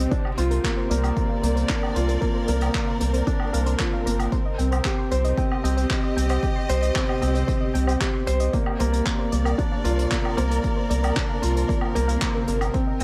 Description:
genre	piano and strings electronica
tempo	114 BPM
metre	4/4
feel	straight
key	unclear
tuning	A4 = 438 Hz
part	warm symphonic string section	sustained chords	0.0-13.0 s	C3 to Eb5	-33 LUFS	equal	sidechain pumping
part	soft round pluck	arpeggios	0.0-13.0 s	Bb4 to C6	-37 LUFS	equal	chorus, sidechain pumping, tape echo
part	felt-muted upright piano	riff	0.0-13.0 s	Bb3 to C5	-29 LUFS	equal	tape echo
part	warm sub bass	bass	0.0-13.0 s	G1 to C2	-25 LUFS	equal	sidechain pumping
part	electronic kick drum	drums	0.1-12.8 s	none	-29 LUFS	equal	none
part	vintage brush drum kit	drums	0.1-13.0 s	handclaps, hi-hat, woodblock	-34 LUFS	equal	none
part	swell	sound effects	11.9-12.7 s	none	-41 LUFS	equal	none
room	light reverb, studio ambience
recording	none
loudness	-23 LUFS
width	mono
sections	0.0-13.0 A section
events	none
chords	0.1 Bbadd9/C; 4.3 Cm; 8.5 Bbadd9/C

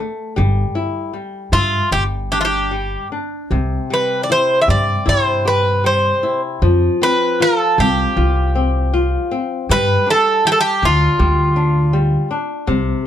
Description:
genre	fado-style ballad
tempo	78 BPM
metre	4/4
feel	uneven beats, rubato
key	unclear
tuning	A4 = 441 Hz
part	flamenco guitar	accompaniment	0.0-13.1 s	C3 to E5	-22 LUFS	left 4 dB	none
part	upright bass	bass	0.4-12.9 s	G1 to G2	-17 LUFS	equal	none
part	Greek bouzouki	melody	1.5-12.3 s	F4 to E5	-16 LUFS	right 1 dB	none
room	light reverb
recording	close, detailed microphones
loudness	-14 LUFS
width	side -10 dB against mid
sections	0.0-13.1 A section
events	none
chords	0.4 Em/G; 1.9 G5; 3.5 C; 6.6 Fsus2; 9.7 G5

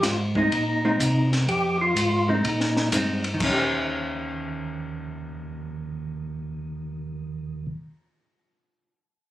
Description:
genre	soul jazz organ trio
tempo	124 BPM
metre	4/4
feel	swing 67% on 8ths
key	Eb mixolydian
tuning	A4 = 439 Hz
part	percussive tonewheel organ	melody	0.0-2.9 s	Eb4 to G4	-24 LUFS	equal	slow rotary speaker, overdrive, chorus vibrato
part	mellow tonewheel organ	bass	0.0-7.7 s	Eb2 to C3	-28 LUFS	right 1 dB	chorus vibrato, slow rotary speaker
part	compact cocktail drum kit	drums	0.0-3.6 s	crash cymbal, hi-hat, kick drum, ride cymbal, snare drum	-28 LUFS	left 1 dB	none
part	hollow-body jazz guitar	accompaniment	0.4-7.9 s	Eb3 to C5	-27 LUFS	equal	none
room	light reverb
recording	recorded on a phone in the room, studio ambience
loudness	-23 LUFS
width	side -14 dB against mid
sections	0.0-3.4 A section; 3.4-7.3 B section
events	none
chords	0.0 Fm7; 0.5 Bb9sus4; 1.5 Fm7; 2.4 Bb9sus4; 3.4 Eb6

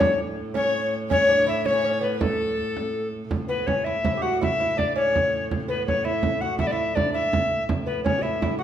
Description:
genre	medieval dance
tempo	109 BPM (dotted quarters)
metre	6/8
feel	straight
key	A major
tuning	A4 = 440 Hz
part	alto recorder	melody	0.0-8.6 s	A4 to F#5	-23 LUFS	left 2 dB	none
part	clear fiddle	second line	0.0-3.1 s	A4 to C#5	-31 LUFS	left 3 dB	none
part	lute	second line	0.0-8.6 s	A3 to G4	-30 LUFS	right 4 dB	none
part	warm viola da gamba	drone	0.0-8.6 s	A2	-33 LUFS	right 1 dB	none
part	frame drum	percussion	0.0-8.6 s	none	-28 LUFS	right 3 dB	none
room	wet recital hall reverb, RT60 1.3 s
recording	minimal, uncompressed stereo recording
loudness	-21 LUFS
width	side -10 dB against mid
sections	0.0-3.3 A section; 3.3-8.6 B section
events	speeding up 0.0-8.6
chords	none

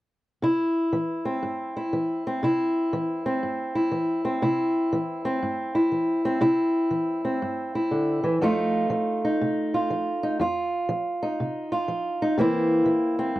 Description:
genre	blues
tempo	121 BPM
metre	4/4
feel	swing 66% on 8ths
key	C mixolydian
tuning	A4 = 440 Hz
part	fingerpicked old ladder-braced acoustic guitar	solo	0.4-13.4 s	F2 to F4	-23 LUFS	equal	none
room	light reverb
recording	dry, close 1970s-style studio recording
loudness	-23 LUFS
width	side -16 dB against mid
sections	0.4-13.4 A section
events	none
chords	0.4 C; 8.4 F7; 12.4 C7

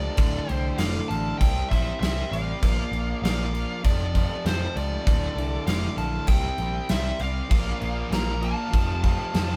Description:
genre	hard rock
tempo	98 BPM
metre	4/4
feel	straight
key	D minor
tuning	A4 = 440 Hz
part	dark smooth lead guitar	melody	0.0-9.6 s	C5 to Bb5	-34 LUFS	equal	overdrive, analog delay
part	octave-fuzz lead guitar	second line	0.0-9.6 s	A4 to F5	-42 LUFS	equal	distortion
part	overdriven electric guitar	riff	0.0-9.6 s	D2 to C4	-38 LUFS	equal	none
part	overdriven semi-hollow guitar	riff	0.0-9.6 s	D2 to C4	-37 LUFS	equal	none
part	picked electric bass	bass	0.0-9.5 s	D1 to F2	-31 LUFS	equal	none
part	gated 80s drum kit	drums	0.2-9.5 s	crash cymbal, kick drum, snare drum	-28 LUFS	equal	none
part	heavy high-gain guitar	riff	7.5-9.6 s	F2 to Bb3	-38 LUFS	equal	distortion
room	light reverb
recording	band playing live in one room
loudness	-25 LUFS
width	mono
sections	0.0-9.6 A section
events	none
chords	0.2 Dm; 1.4 C5; 2.6 Bb; 3.8 F; 5.1 Dm; 6.3 C; 7.5 Bb; 8.7 F

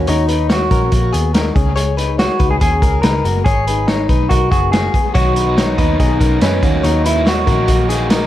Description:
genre	jangly indie pop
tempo	142 BPM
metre	4/4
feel	straight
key	unclear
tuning	A4 = 440 Hz
part	electric guitar through a small old amp	melody	0.0-7.9 s	C#4 to A#4	-18 LUFS	equal	dub echo
part	direct-recorded clean electric guitar	arpeggios	0.0-8.3 s	A#3 to C#5	-22 LUFS	left 6 dB	harmonic tremolo, dub echo
part	vintage muted picked electric bass	bass	0.0-8.3 s	F#1 to F#2	-18 LUFS	equal	none
part	vintage drum kit	drums	0.1-8.2 s	hi-hat, kick drum, snare drum	-16 LUFS	equal	none
part	overdriven electric guitar	accompaniment	5.1-8.3 s	B2 to D#4	-22 LUFS	right 3 dB	dub echo
room	light reverb, studio ambience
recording	echo-heavy mix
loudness	-12 LUFS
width	side -13 dB against mid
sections	0.0-8.3 A section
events	none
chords	0.0 D#m; 1.6 G#madd9; 5.2 B; 6.6 D#m

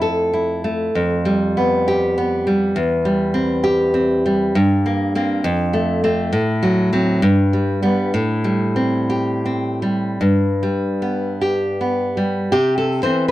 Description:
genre	romantic piece for solo classical guitar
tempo	49-68 BPM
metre	2/4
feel	rubato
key	C major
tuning	A4 = 440 Hz
part	nylon-string guitar	solo	0.0-13.3 s	E2 to C5	-16 LUFS	equal	none
room	small room ambience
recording	dry, close 1970s-style studio recording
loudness	-16 LUFS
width	side -15 dB against mid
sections	0.0-12.5 A section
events	none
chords	0.0 Fmaj7; 0.9 G7/F; 2.8 C/E; 4.6 C5/G; 5.5 F; 6.3 Am6; 7.2 G; 8.2 Am7; 10.2 G; 12.5 C

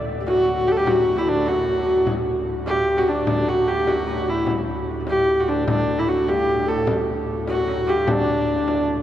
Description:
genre	medieval dance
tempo	100 BPM (dotted quarters)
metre	6/8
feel	straight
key	D major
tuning	A4 = 440 Hz
part	pipe organ, cornet	drone	0.0-9.0 s	D2 to A2	-31 LUFS	equal	none
part	frame drum	percussion	0.1-9.0 s	none	-29 LUFS	left 2 dB	none
part	breathy mellow tenor recorder	second line	0.2-8.9 s	D4 to A4	-28 LUFS	left 3 dB	none
part	warm hurdy-gurdy	melody	0.3-8.8 s	D4 to A4	-20 LUFS	equal	none
part	lute	second line	0.3-8.8 s	D2 to A2	-28 LUFS	right 2 dB	none
room	wet cathedral reverb, RT60 6.5 s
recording	worn, warbling old tape, cassette tape, warbly pitch drift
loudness	-18 LUFS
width	side -11 dB against mid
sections	0.0-9.0 A section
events	none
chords	none

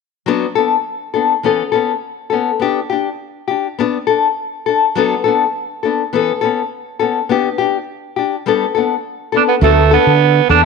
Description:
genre	highlife guitar band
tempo	102 BPM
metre	4/4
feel	straight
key	D major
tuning	A4 = 440 Hz
part	nylon-string guitar	accompaniment	0.3-10.7 s	E3 to A4	-15 LUFS	left 8 dB	none
part	raspy tenor saxophone	melody	9.4-10.6 s	A3 to D4	-11 LUFS	right 15 dB	none
part	mellow fretless electric bass	bass	9.6-10.7 s	D2 to D3	-13 LUFS	right 3 dB	none
room	moderate echo chamber reverb, RT60 1.4 s, small room ambience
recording	1960s-style stereo with parts hard left and right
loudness	-14 LUFS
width	side -4 dB against mid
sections	0.3-9.6 A section; 9.6-10.7 B section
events	none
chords	0.3 D6; 1.4 Aadd9; 2.6 Bm; 3.8 Bm7; 5.0 D6; 6.1 Aadd9; 7.3 Bm; 8.5 Gadd9; 9.6 D6

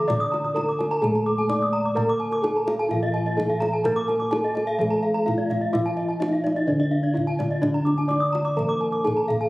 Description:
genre	Balinese gamelan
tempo	127 BPM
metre	4/4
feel	straight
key	D pelog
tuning	A4 = 441 Hz
part	gamelan-type bronze metallophone	melody	0.0-9.5 s	D4 to D5	-24 LUFS	equal	none
part	gamelan-type bronze metallophone	accompaniment	0.0-9.5 s	D3 to D4	-30 LUFS	equal	none
part	gamelan-type bronze metallophone	arpeggios	0.0-9.5 s	D5 to Eb6	-30 LUFS	right 1 dB	none
part	gamelan-type bossed gongs	bass	0.0-9.5 s	Bb2-40c to D5	-29 LUFS	equal	none
part	gamelan-type bronze metallophone	arpeggios	0.1-9.4 s	D5 to D6	-29 LUFS	left 1 dB	none
part	kendang	percussion	0.1-9.4 s	none	-32 LUFS	equal	none
room	moderate concert hall reverb, RT60 1.6 s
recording	recorded on a phone in the room, studio ambience, compression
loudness	-21 LUFS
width	side -19 dB against mid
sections	0.0-9.5 A section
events	none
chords	none

